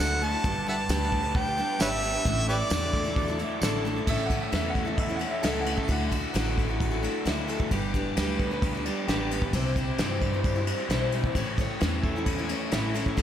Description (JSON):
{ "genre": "folk rock and heartland rock", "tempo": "132 BPM", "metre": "4/4", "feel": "straight", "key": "unclear", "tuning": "A4 = 439 Hz", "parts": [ { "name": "warm harmonica", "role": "melody", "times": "0.0-3.4 s", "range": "G4 to A5", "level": "-29 LUFS", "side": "right 1 dB", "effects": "diffuse ambient delay" }, { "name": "picked steel-string acoustic guitar", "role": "accompaniment", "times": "0.0-13.2 s", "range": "A2 to C#5", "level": "-32 LUFS", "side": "left 2 dB", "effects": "none" }, { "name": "raw garage guitar", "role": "riff", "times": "0.0-13.2 s", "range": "G2 to A4", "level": "-33 LUFS", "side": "right 1 dB", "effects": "overdrive" }, { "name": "upright bass", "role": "bass", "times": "0.0-13.2 s", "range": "G1 to G2", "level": "-31 LUFS", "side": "equal", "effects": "none" }, { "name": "soft brush drum kit", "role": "drums", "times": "0.0-13.2 s", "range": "crash cymbal, hi-hat, kick drum, ride cymbal, snare drum", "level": "-30 LUFS", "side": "equal", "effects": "none" }, { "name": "tambourine", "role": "percussion", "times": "0.9-3.7 s", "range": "none", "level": "-40 LUFS", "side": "right 5 dB", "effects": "none" }, { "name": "clear upright piano", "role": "second line", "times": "4.1-7.2 s", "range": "Eb5 to F#5", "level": "-35 LUFS", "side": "right 1 dB", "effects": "none" } ], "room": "moderate cathedral reverb, RT60 4.8 s", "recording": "dreamy mix soaked in reverb", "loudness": "-25 LUFS", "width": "side -10 dB against mid", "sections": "0.0-4.1 A section; 4.1-13.2 B section", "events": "harmonica solo 0.0-4.1", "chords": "0.4 G; 2.3 Asus4; 4.1 A; 5.9 Dadd9; 7.7 G; 9.5 C; 11.4 A" }